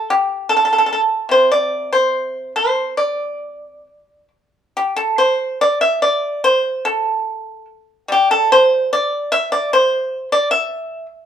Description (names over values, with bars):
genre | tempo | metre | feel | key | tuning
chinese traditional, Chinese solo plucked strings | 66-77 BPM | 4/4 | rubato | unclear | A4 = 440 Hz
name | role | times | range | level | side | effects
pipa | solo | 0.0-11.1 s | C3 to E5 | -15 LUFS | equal | none
room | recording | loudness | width
light reverb | band playing live in one room | -14 LUFS | side -9 dB against mid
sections
0.0-4.8 A section; 4.8-11.3 B section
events
none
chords
none